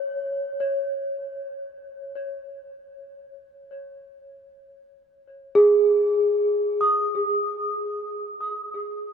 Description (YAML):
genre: ambient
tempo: free time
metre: none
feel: none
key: unclear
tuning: A4 = 438 Hz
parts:
  - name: celesta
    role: solo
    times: 0.0-9.1 s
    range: G#4 to D#6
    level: -22 LUFS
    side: right 1 dB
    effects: tape echo
room: wet huge ambient reverb, RT60 8.7 s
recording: none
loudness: -21 LUFS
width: side -7 dB against mid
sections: 0.0-9.1 A section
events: none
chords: 0.1 G#sus4